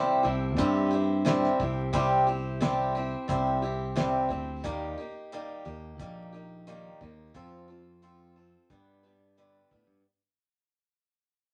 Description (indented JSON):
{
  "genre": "folk rock and heartland rock",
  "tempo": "89 BPM",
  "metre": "4/4",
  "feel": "straight",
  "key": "unclear",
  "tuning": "A4 = 440 Hz",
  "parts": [
    { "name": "picked swing-style acoustic guitar", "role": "accompaniment", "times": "0.0-10.1 s", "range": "G2 to B4", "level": "-31 LUFS", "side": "equal", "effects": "none" },
    { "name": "modern bright picked electric bass", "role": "bass", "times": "0.2-10.0 s", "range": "Bb1 to A2", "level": "-34 LUFS", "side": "equal", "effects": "none" },
    { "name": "damped 70s drum kit", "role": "drums", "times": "0.6-9.9 s", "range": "hi-hat, kick drum, snare drum", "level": "-34 LUFS", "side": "equal", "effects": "none" }
  ],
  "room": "moderate club reverb, RT60 0.5 s",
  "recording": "vinyl crackle",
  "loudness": "-28 LUFS",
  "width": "mono",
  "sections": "0.0-10.0 A section",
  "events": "fade-out 0.0-10.0",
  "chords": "0.0 C; 4.6 Eb; 7.3 F; 8.7 G"
}